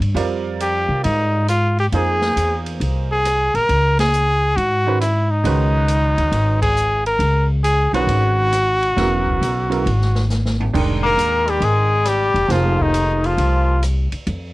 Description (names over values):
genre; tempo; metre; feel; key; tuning
modal jazz; 136 BPM; 4/4; swing 67% on 8ths; unclear; A4 = 442 Hz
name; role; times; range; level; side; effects
upright bass; bass; 0.0-14.5 s; Fb1 to C3; -19 LUFS; equal; none
open jazz drum kit; drums; 0.0-14.4 s; crash cymbal, hi-hat, kick drum, ride cymbal, rim click, snare drum, toms; -29 LUFS; equal; none
bright upright piano; accompaniment; 0.1-13.7 s; Db3 to G5; -25 LUFS; right 6 dB; cassette tape
warm trumpet; melody; 0.6-13.8 s; Eb4 to Bb4; -18 LUFS; equal; cassette tape
bright tenor saxophone; second line; 11.0-13.8 s; Eb3 to Bb3; -24 LUFS; left 7 dB; cassette tape
room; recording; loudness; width
little or no reverb; home recording on cassette; -15 LUFS; side -19 dB against mid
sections
0.0-14.5 A section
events
band accent 3.9, 6.5; drum fill 10.3-10.7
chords
0.0 Fm11; 3.7 Dbm11; 10.7 Fm11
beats
| 0.16 0.60 1.04 1.48 | 1.92 2.36 2.80 3.24 | 3.68 4.12 4.56 5.00 | 5.44 5.88 6.33 6.77 | 7.21 7.65 8.09 8.53 | 8.97 9.41 9.85 10.29 | 10.74 11.18 11.62 12.06 | 12.50 12.94 13.38 13.83 | 14.27